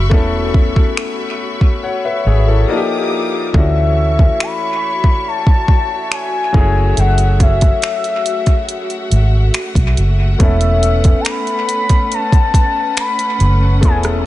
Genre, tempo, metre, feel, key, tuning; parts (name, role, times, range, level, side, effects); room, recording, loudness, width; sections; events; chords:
contemporary R&B; 70 BPM; 4/4; straight; A major; A4 = 444 Hz
bright concert grand piano; accompaniment; 0.0-14.3 s; E3 to F#5; -21 LUFS; left 4 dB; dub echo
rich studio string section; sustained chords; 0.0-14.3 s; A3 to D#6; -24 LUFS; equal
vintage muted fingered electric bass; bass; 0.0-14.3 s; E1 to D2; -13 LUFS; equal
smooth R&B drum kit; drums; 0.1-14.2 s; finger snaps, hi-hat, kick drum, rim click; -14 LUFS; equal
gliding portamento lead; melody; 3.6-14.0 s; E5 to B5; -18 LUFS; left 2 dB; chorus, dub echo
little or no reverb; echo-heavy mix, nothing above 10.6 kHz; -12 LUFS; side -15 dB against mid
0.0-3.5 A section; 3.5-14.3 B section
break 2.7-3.5
0.0 Amaj9/E; 2.7 D#maj9; 3.5 Dmaj9; 6.5 F#m9; 10.4 Aadd9/E